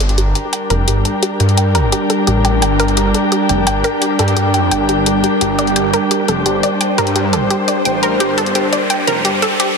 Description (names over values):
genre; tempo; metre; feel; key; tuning
dark technical drum and bass; 172 BPM; 4/4; straight; G minor; A4 = 441 Hz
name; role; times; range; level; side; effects
deep dark ambient pad; sustained chords; 0.3-9.8 s; G3 to D5; -18 LUFS; right 1 dB; chorus, built-in reverb
wide unison pluck; arpeggios; 0.0-9.7 s; G4 to G5; -19 LUFS; equal; digital delay
snarling distorted saw bass; bass; 0.0-9.4 s; F1 to G2; -17 LUFS; equal; distortion
electronic hi-hat; drums; 0.0-9.7 s; none; -19 LUFS; left 2 dB; none
muted studio string section; texture; 0.0-9.8 s; D4 to G5; -19 LUFS; left 2 dB; none
riser; sound effects; 7.6-9.8 s; none; -25 LUFS; right 1 dB; none
room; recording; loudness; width
moderate lush hall reverb, RT60 1.8 s; dense, heavily limited modern master, high-pass filter; -12 LUFS; side -5 dB against mid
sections
0.0-9.8 A section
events
build-up 0.0-9.8; filter sweep on synth arpeggio sound 0.0-9.8; filter sweep 0.0-9.8; riser 7.6-9.8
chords
0.0 Gm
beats
0.18 0.53 0.88 | 1.23 1.57 1.92 2.27 | 2.62 2.97 3.32 3.67 | 4.02 4.37 4.71 5.06 | 5.41 5.76 6.11 6.46 | 6.81 7.16 7.50 7.85 | 8.20 8.55 8.90 9.25 | 9.60